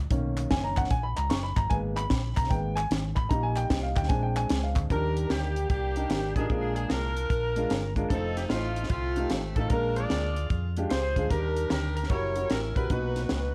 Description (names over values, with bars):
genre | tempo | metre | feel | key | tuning
uptempo gospel | 150 BPM | 4/4 | swing 66% on 8ths | Eb major | A4 = 441 Hz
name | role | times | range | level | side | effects
fingered electric bass | bass | 0.0-13.5 s | F1 to F2 | -33 LUFS | equal | none
warm upright piano | accompaniment | 0.1-13.5 s | Bb2 to Db6 | -34 LUFS | equal | none
tight funk drum kit | drums | 0.1-13.4 s | hi-hat, kick drum, snare drum | -32 LUFS | equal | none
group handclap | percussion | 0.4-4.8 s | none | -44 LUFS | equal | none
edgy saxophone section | melody | 4.9-13.5 s | A3 to D5 | -36 LUFS | equal | none
overdriven slide guitar | melody | 4.9-13.5 s | F4 to D5 | -37 LUFS | equal | none
room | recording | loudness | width
light reverb | worn, warbling old tape, cassette tape, warbly pitch drift | -28 LUFS | mono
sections
0.0-4.9 A section; 4.9-13.5 B section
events
upright piano solo 0.0-4.9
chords
0.1 Bmaj7; 1.7 Abmadd9; 3.3 Eb/Bb; 4.1 Bb7; 4.9 Ebmaj7; 6.5 Bb7; 8.1 F7; 9.7 Bb7; 11.3 Ebmaj7; 12.1 Gb7b9; 12.9 Bmaj7